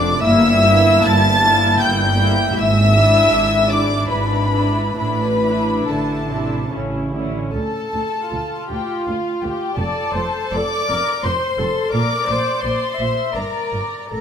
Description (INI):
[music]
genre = classical, slow romantic movement for string orchestra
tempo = 65-88 BPM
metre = 3/4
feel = rubato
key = D minor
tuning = A4 = 439 Hz
[part]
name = warm chamber violin section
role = melody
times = 0.0-14.2 s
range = F5 to A6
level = -22 LUFS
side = left 2 dB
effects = none
[part]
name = warm symphonic violin section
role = second line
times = 0.0-14.2 s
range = F4 to A5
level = -20 LUFS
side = left 2 dB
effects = none
[part]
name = warm studio viola section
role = accompaniment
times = 0.0-14.2 s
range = A3 to E5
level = -22 LUFS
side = equal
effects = none
[part]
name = warm symphonic cello section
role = bass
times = 0.0-14.2 s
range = D2 to D3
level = -23 LUFS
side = right 2 dB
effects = none
[part]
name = warm symphonic double bass section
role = bass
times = 0.0-14.2 s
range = F1 to D2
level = -23 LUFS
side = right 2 dB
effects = none
[sound]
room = wet recital hall reverb, RT60 1.6 s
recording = none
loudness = -15 LUFS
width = side -8 dB against mid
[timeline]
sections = 0.0-7.5 A section; 7.5-14.2 B section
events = none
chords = 0.2 Edim/G; 2.5 E7/G#; 5.0 Asus4; 6.7 A; 7.5 Dm; 9.8 F; 11.9 Bb; 13.4 Gm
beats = | 0.23 1.05 1.80 | 2.55 3.30 4.09 | 4.97 5.87 6.72 | 7.55 8.32 9.07 | 9.78 10.54 11.24 | 11.93 12.64 13.36 | 14.12